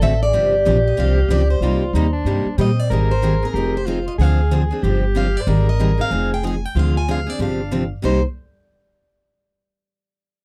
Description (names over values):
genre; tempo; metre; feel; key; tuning
acoustic string swing (jazz manouche); 187 BPM; 4/4; swing 59% on 8ths; C minor; A4 = 440 Hz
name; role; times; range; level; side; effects
picked plugged-in steel-string acoustic guitar; melody; 0.0-8.2 s; Bb4 to Ab5; -26 LUFS; equal; none
mellow soprano saxophone; second line; 0.0-8.2 s; C4 to C5; -28 LUFS; equal; none
picked steel-string acoustic guitar; accompaniment; 0.0-8.2 s; C3 to A4; -24 LUFS; equal; none
upright bass; bass; 0.0-8.2 s; F1 to Bb2; -21 LUFS; equal; none
room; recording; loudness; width
little or no reverb; dry, close 1970s-style studio recording; -18 LUFS; mono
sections
0.0-2.9 A section; 2.9-8.0 B section; 8.0-9.3 C section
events
none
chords
0.3 G7sus4; 1.6 Cm7; 2.9 Abmaj9; 3.5 Fm9; 4.2 Dm7b5; 4.8 G7sus4; 5.5 Abmaj9; 6.1 Fm7; 6.8 Dm7b5; 7.4 G7sus4; 8.0 Cm7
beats
0.02 | 0.34 0.66 0.98 1.30 | 1.62 1.94 2.26 2.58 | 2.90 3.23 3.54 3.87 | 4.19 4.51 4.83 5.15 | 5.47 5.79 6.11 6.43 | 6.75 7.08 7.40 7.72 | 8.04